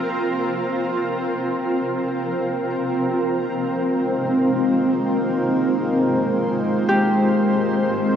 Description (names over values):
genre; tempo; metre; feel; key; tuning
ambient; free time; none; none; unclear; A4 = 441 Hz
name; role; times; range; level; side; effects
granular cloud pad; sustained chords; 0.0-8.2 s; Ab3 to C5; -19 LUFS; equal; built-in reverb, shimmer reverb
pedal harmonium; drone; 0.0-8.2 s; Eb3 to Bb3; -30 LUFS; equal; none
Celtic harp; arpeggios; 6.9-8.2 s; G4; -23 LUFS; left 1 dB; shimmer reverb
room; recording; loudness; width
wet huge ambient reverb, RT60 8.3 s; nothing above 8.0 kHz; -18 LUFS; side -8 dB against mid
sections
0.0-3.1 A section; 3.1-8.2 B section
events
none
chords
0.0 Ebsus2; 3.1 Ab6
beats
free time